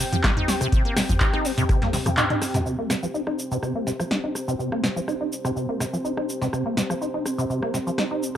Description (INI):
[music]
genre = acid house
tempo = 124 BPM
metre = 4/4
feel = straight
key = C minor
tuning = A4 = 440 Hz
[part]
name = dark analog pad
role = sustained chords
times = 0.0-8.4 s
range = C4 to G5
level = -30 LUFS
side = equal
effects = chorus, sidechain pumping
[part]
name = acid bass, saw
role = riff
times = 0.0-8.4 s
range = C3 to Eb4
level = -26 LUFS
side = equal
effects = wide subtle chorus, sidechain pumping, analog delay
[part]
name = electro analog drum machine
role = drums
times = 0.0-8.3 s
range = handclaps, hi-hat, rim click, shaker, snare drum, toms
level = -25 LUFS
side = equal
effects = none
[part]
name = electronic kick drum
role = drums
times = 0.2-1.8 s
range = none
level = -22 LUFS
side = equal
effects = none
[sound]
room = moderate spring reverb, RT60 1.2 s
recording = none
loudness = -22 LUFS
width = side -10 dB against mid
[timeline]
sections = 0.0-2.7 A section; 2.7-8.4 B section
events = drop 0.0-2.7; drum fill 1.9-2.7; kick drops out 2.2-2.7; band accent 2.2; filter sweep on acid bass 2.7-8.4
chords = 0.0 C5